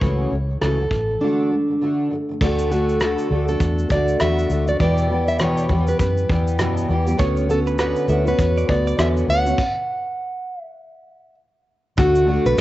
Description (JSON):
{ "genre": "acoustic pop", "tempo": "100 BPM", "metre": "4/4", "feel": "swing 60% on 16ths", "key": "D major", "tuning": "A4 = 437 Hz", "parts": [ { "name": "fingerpicked plugged-in steel-string acoustic guitar", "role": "melody", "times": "0.0-12.6 s", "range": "D4 to F#5", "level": "-22 LUFS", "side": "right 1 dB", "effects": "cassette tape" }, { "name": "fingerpicked steel-string acoustic guitar", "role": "accompaniment", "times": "0.0-12.6 s", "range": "E2 to G4", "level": "-22 LUFS", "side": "equal", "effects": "double-tracked left and right, cassette tape" }, { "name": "vintage muted fingered electric bass", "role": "bass", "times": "0.0-12.6 s", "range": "A1 to F#2", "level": "-22 LUFS", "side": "equal", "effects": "none" }, { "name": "soft brush drum kit", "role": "drums", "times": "0.0-12.6 s", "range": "crash cymbal, kick drum, rim click, shaker, snare drum", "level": "-25 LUFS", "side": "equal", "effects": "cassette tape" }, { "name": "direct-recorded clean electric guitar", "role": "arpeggios", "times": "7.2-9.2 s", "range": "B4 to E5", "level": "-32 LUFS", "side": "right 6 dB", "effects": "warbly pitch drift, cassette tape" } ], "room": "light reverb, small room ambience", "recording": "home recording on cassette, nothing above 7.9 kHz", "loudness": "-17 LUFS", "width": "side -15 dB against mid", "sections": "0.0-2.4 A section; 2.4-12.0 B section", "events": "stop 9.6-12.0", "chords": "0.0 F#m7/C#; 1.2 D; 4.8 Em; 7.2 Bmadd9/D; 9.6 N.C.; 12.0 D" }